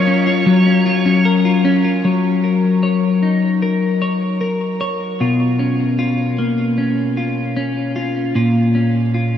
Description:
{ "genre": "dream pop", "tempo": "76 BPM", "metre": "4/4", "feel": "straight", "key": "F# major", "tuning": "A4 = 440 Hz", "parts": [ { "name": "overdriven slide guitar", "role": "melody", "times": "0.0-1.3 s", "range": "C#5", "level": "-22 LUFS", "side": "right 4 dB", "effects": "shimmer reverb, tape echo" }, { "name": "clean electric guitar", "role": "arpeggios", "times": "0.0-9.4 s", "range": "A#2 to C#5", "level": "-14 LUFS", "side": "left 2 dB", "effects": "analog chorus, shimmer reverb, tape echo" } ], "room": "wet huge ambient reverb, RT60 5.2 s", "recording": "dark, warm production", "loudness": "-14 LUFS", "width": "side -9 dB against mid", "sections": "0.0-2.0 A section; 2.0-9.4 B section", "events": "none", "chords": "0.0 F#maj7; 2.0 F#6; 5.2 Bsus2; 8.4 A#m" }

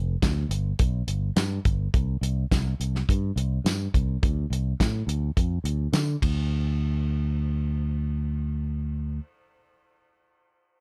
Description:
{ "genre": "classic rock", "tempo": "105 BPM", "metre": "4/4", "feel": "straight", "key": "unclear", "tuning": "A4 = 440 Hz", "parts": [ { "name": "fingered electric bass", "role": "bass", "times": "0.0-9.2 s", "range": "F1 to D3", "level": "-28 LUFS", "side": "equal", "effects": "none" }, { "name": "damped 70s drum kit", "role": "drums", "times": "0.2-6.4 s", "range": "hi-hat, kick drum, ride cymbal, snare drum, tambourine", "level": "-28 LUFS", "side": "equal", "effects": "none" } ], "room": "little or no reverb", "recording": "none", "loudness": "-26 LUFS", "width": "mono", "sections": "0.0-6.5 A section; 6.5-8.8 B section", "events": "drum fill 6.2", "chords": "none" }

